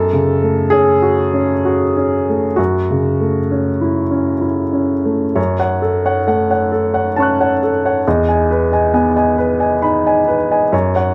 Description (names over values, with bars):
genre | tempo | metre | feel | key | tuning
neoclassical minimalist piano | 66 BPM | 3/4 | uneven beats, rubato | F# dorian | A4 = 440 Hz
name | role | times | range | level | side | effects
warm upright piano | solo | 0.0-11.1 s | E2 to F#6 | -15 LUFS | equal | none
room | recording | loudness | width
light reverb | close, detailed microphones | -15 LUFS | mono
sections
0.0-5.4 A section; 5.4-11.1 B section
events
none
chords
0.0 F#m; 2.6 F#m7; 5.4 F#m; 8.1 Emaj7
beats
0.74 1.65 | 2.58 3.51 4.44 | 5.38 6.27 7.16 | 8.05 8.94 9.84 | 10.73